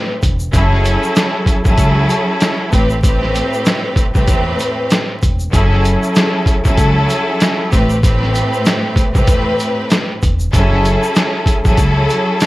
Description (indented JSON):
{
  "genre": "hip hop, boom-bap hip-hop",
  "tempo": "96 BPM",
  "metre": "4/4",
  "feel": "swing 58% on 16ths",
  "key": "unclear",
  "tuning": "A4 = 440 Hz",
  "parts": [
    { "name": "bright studio string section", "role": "accompaniment", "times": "0.0-12.5 s", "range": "A2 to B4", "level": "-16 LUFS", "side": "equal", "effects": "cassette tape" },
    { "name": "upright bass", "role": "bass", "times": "0.2-12.0 s", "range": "E1 to E2", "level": "-16 LUFS", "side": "equal", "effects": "none" },
    { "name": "trip hop sampler-style drum kit", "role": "drums", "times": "0.2-12.5 s", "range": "hi-hat, kick drum, snare drum", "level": "-14 LUFS", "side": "equal", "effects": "none" },
    { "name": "tube shaker", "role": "percussion", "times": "0.2-12.5 s", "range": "none", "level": "-34 LUFS", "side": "left 1 dB", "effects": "none" }
  ],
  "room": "little or no reverb",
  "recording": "dry, gritty hardware recording, vinyl crackle",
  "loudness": "-12 LUFS",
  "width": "side -18 dB against mid",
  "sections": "0.0-12.5 A section",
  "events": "none",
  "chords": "0.0 Am9; 0.5 F#m9; 2.7 Am9; 5.5 F#m9; 7.7 Am9; 10.5 F#m9",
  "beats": "| 0.53 1.16 1.78 2.41 | 3.03 3.66 4.28 4.91 | 5.53 6.16 6.78 7.41 | 8.03 8.66 9.28 9.91 | 10.53 11.16 11.78 12.41"
}